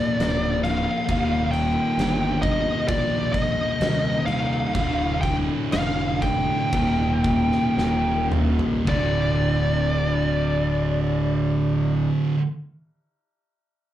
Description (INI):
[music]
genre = stoner and doom metal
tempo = 53-67 BPM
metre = 4/4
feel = straight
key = D phrygian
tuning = A4 = 440 Hz
[part]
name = fuzz lead guitar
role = melody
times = 0.0-12.1 s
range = D5 to G5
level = -26 LUFS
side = equal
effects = distortion, slapback echo
[part]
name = crunchy overdriven guitar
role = riff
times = 0.0-12.4 s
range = D2 to Bb3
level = -30 LUFS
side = equal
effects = slapback echo
[part]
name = thick fuzz guitar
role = riff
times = 0.0-12.4 s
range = D2 to Bb3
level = -27 LUFS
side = left 5 dB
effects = distortion
[part]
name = thick fuzz guitar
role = riff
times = 0.0-12.4 s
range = D2 to Bb3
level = -27 LUFS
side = right 6 dB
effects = distortion, slapback echo
[part]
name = fuzz fingered electric bass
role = bass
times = 0.2-12.1 s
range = D1 to C2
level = -27 LUFS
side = equal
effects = overdrive
[part]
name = oversized low-tuned drum kit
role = drums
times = 0.2-9.1 s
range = crash cymbal, kick drum, snare drum, toms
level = -28 LUFS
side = equal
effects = none
[sound]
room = light reverb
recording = live gig heard through the venue's PA, club ambience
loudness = -20 LUFS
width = side -12 dB against mid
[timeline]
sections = 0.0-8.9 A section; 8.9-13.4 B section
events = slowing down 1.1-8.9; drum fill 7.8-8.9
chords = 0.0 Bb; 1.1 Eb; 4.8 Dm; 6.7 Eb; 8.9 D5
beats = 0.19 | 1.09 1.98 2.89 3.81 | 4.75 5.72 6.73 7.78 | 8.87 9.99 11.12 12.24